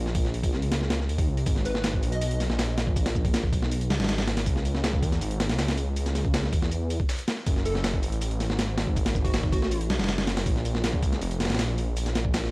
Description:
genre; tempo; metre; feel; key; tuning
drum and bass, jungle; 160 BPM; 4/4; straight; unclear; A4 = 440 Hz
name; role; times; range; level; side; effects
detuned saw bass; bass; 0.0-12.5 s; E#1 to E2; -27 LUFS; equal; none
breakbeat sampler-style drum kit; drums; 0.1-12.5 s; hi-hat, kick drum, snare drum; -26 LUFS; equal; studio reverb
dusty soul sampler-style drum kit; drums; 1.5-12.5 s; hi-hat, shaker, snare drum; -39 LUFS; left 1 dB; high-pass filter on perc, studio reverb, high-pass filter on snare, high-pass filter on hats
plucky unison lead; melody; 1.7-2.4, 7.7-9.8 s; F#4 to D#5; -35 LUFS; equal; analog chorus, dub echo
room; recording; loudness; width
digital ambience; dry, gritty hardware recording, vinyl crackle; -24 LUFS; side -26 dB against mid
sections
0.0-12.5 A section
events
none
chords
0.0 A#madd9; 1.5 G#madd9; 4.5 C#m; 7.5 F#madd9; 10.5 A#m

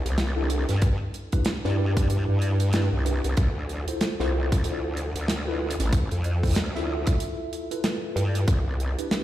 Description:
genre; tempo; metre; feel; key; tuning
glitch hop; 94 BPM; 4/4; swing 60% on 16ths; D dorian; A4 = 441 Hz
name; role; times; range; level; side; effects
growl bass; bass; 0.0-9.0 s; A1 to G2; -25 LUFS; equal; chorus
tight metal drum kit; drums; 0.1-9.2 s; hi-hat, snare drum; -31 LUFS; right 1 dB; none
mellow tine electric piano; stabs; 0.4-9.2 s; D4 to E5; -31 LUFS; equal; medium stereo tremolo, sidechain pumping, ping-pong delay
electronic kick drum; drums; 0.8-8.6 s; none; -22 LUFS; equal; overdrive
room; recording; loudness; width
light reverb, small room ambience; played on a big sound system in a bare room, stone room reverb; -23 LUFS; side -13 dB against mid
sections
0.0-9.2 A section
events
break 7.2-8.5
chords
0.0 Cmaj9; 3.4 Dm7; 8.5 Cmaj9

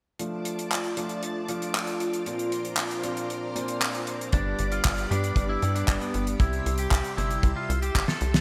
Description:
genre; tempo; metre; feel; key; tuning
italo disco; 116 BPM; 4/4; straight; D minor; A4 = 439 Hz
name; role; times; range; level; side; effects
string machine, full ensemble; sustained chords; 0.2-8.4 s; F4 to E6; -37 LUFS; equal; ensemble chorus
clear concert grand piano; stabs; 0.2-7.7 s; G2 to G4; -35 LUFS; equal; vintage 12-bit sampler grit, low-pass filter
damped 70s drum kit; drums; 0.2-8.4 s; handclaps, hi-hat, snare drum; -32 LUFS; equal; small room ambience, gated reverb
lightly driven lead guitar; melody; 4.3-8.4 s; B3 to A4; -34 LUFS; equal; digital delay
tight sequencer bass; bass; 4.3-8.4 s; G1 to G2; -31 LUFS; equal; none
kick drum; drums; 4.3-8.1 s; none; -25 LUFS; equal; small room ambience
room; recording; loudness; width
moderate lush hall reverb, RT60 2.0 s; bright 1980s-style digital production; -27 LUFS; mono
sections
0.2-8.4 A section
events
filter sweep on grand piano 0.2-8.4; drum fill 8.1-8.4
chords
0.2 Dm; 2.3 Bbadd9; 4.3 G; 6.4 C

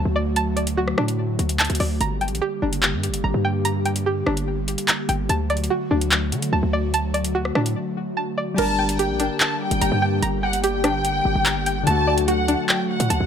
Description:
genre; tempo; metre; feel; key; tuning
hip hop, drill; 146 BPM; 4/4; half-time; G harmonic minor; A4 = 440 Hz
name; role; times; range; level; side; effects
airy breathy pad; sustained chords; 0.0-13.3 s; D3 to G4; -26 LUFS; equal; chorus
string-like resonator pluck; arpeggios; 0.0-13.3 s; D4 to Bb5; -26 LUFS; right 2 dB; chorus, low-pass filter, ping-pong delay
hard-hitting 808-style bass; bass; 0.0-13.3 s; F#1 to D3; -24 LUFS; equal; none
drill drum kit; drums; 0.4-13.2 s; crash cymbal, handclaps, hi-hat, rim click; -23 LUFS; left 1 dB; none
glassy digital keys; accompaniment; 8.5-13.3 s; D3 to Bb4; -27 LUFS; left 4 dB; chorus, low-pass filter
warm studio violin section; second line; 8.6-13.3 s; F#5 to A5; -24 LUFS; left 1 dB; ping-pong delay
room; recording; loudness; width
light reverb; none; -19 LUFS; side -8 dB against mid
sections
0.0-8.6 A section; 8.6-13.3 B section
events
break 7.8-8.6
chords
0.0 D; 2.0 Gm; 5.3 D; 8.6 Gm; 11.9 D

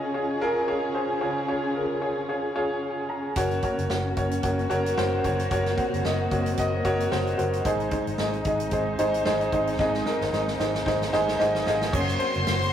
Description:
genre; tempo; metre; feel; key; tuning
piano-driven pop; 112 BPM; 4/4; swing 56% on 16ths; unclear; A4 = 444 Hz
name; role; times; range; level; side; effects
clear upright piano; accompaniment; 0.0-12.7 s; Ab2 to Bb5; -25 LUFS; equal; none
dark symphonic string section; sustained chords; 0.0-12.7 s; Db3 to Ab4; -30 LUFS; equal; none
vintage muted fingered electric bass; bass; 3.4-12.7 s; Gb1 to Ab1; -30 LUFS; equal; none
natural country drum kit; drums; 3.4-12.7 s; crash cymbal, hi-hat, kick drum, ride cymbal, snare drum; -32 LUFS; equal; none
clear studio violin section; second line; 11.9-12.7 s; C5 to C6; -27 LUFS; left 1 dB; none
tube shaker; percussion; 11.9-12.7 s; none; -46 LUFS; right 4 dB; none
room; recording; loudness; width
wet stone room reverb, RT60 1.4 s; rough rehearsal-room recording, tube saturation; -23 LUFS; side -10 dB against mid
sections
0.0-11.9 A section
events
drum fill 9.8-11.9; upright piano fill 10.9-11.9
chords
0.0 Db; 3.4 Gb; 7.7 Ab; 11.9 Gb

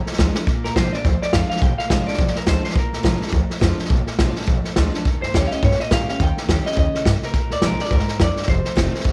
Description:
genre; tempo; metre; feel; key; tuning
rockabilly; 210 BPM; 4/4; swing 58% on 8ths; Bb mixolydian; A4 = 440 Hz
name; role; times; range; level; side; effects
picked steel-string acoustic guitar; accompaniment; 0.0-9.1 s; F2 to G4; -28 LUFS; equal; none
upright bass; bass; 0.0-9.1 s; F1 to Bb2; -24 LUFS; equal; none
vintage drum kit; drums; 0.1-9.1 s; hi-hat, kick drum, snare drum; -23 LUFS; equal; none
electric guitar through a small old amp; melody; 0.6-9.1 s; Bb4 to G5; -28 LUFS; equal; warbly pitch drift, tape echo
room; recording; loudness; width
small room ambience; none; -20 LUFS; mono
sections
0.5-9.1 A section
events
drum fill 0.3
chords
0.5 Bb7; 5.1 Eb7; 7.3 Bb7; 8.5 F7

